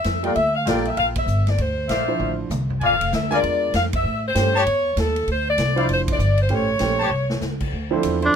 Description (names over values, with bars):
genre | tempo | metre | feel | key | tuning
jazz, big band swing | 195 BPM | 4/4 | swing 62% on 8ths | D minor | A4 = 440 Hz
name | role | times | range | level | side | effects
bright saxophone section | melody | 0.0-7.4 s | A4 to F5 | -21 LUFS | left 2 dB | none
upright bass | bass | 0.0-8.3 s | F1 to A2 | -24 LUFS | equal | none
swinging big-band drum kit | drums | 0.0-8.3 s | crash cymbal, hi-hat, kick drum, ride cymbal, snare drum, toms | -28 LUFS | equal | none
warm concert grand piano | accompaniment | 0.2-8.3 s | F3 to C5 | -24 LUFS | right 6 dB | none
warm trumpet section | stabs | 0.2-7.1 s | E4 to A5 | -23 LUFS | left 3 dB | none
bright trombone section | sustained chords | 7.9-8.3 s | F3 to C5 | -28 LUFS | left 1 dB | none
breathy tenor saxophone | melody | 8.3-8.4 s | D4 | -15 LUFS | right 1 dB | none
room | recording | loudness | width
light reverb | minimal, uncompressed stereo recording | -18 LUFS | side -7 dB against mid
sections
0.0-7.7 A section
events
band accent 1.1, 3.9, 6.0; drum fill 2.2-2.8, 7.1-7.4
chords
0.0 Gm9; 1.6 Dm9; 2.8 Bb7; 4.0 A7#9; 5.3 Dm9; 6.5 A7#9; 7.7 Dm9